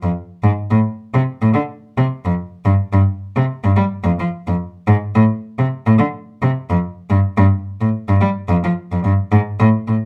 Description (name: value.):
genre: funk.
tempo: 108 BPM.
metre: 4/4.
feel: swing 56% on 16ths.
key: unclear.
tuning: A4 = 440 Hz.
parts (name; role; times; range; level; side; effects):
warm cello; solo; 0.0-10.0 s; F2 to G3; -17 LUFS; equal; none.
room: wet small room reverb, RT60 0.5 s.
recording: band playing live in one room.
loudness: -17 LUFS.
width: mono.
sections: 0.0-9.6 A section.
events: none.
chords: none.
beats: 0.15 | 0.71 1.26 1.82 2.38 | 2.93 3.49 4.04 4.60 | 5.15 5.71 6.26 6.82 | 7.38 7.93 8.49 9.04 | 9.60.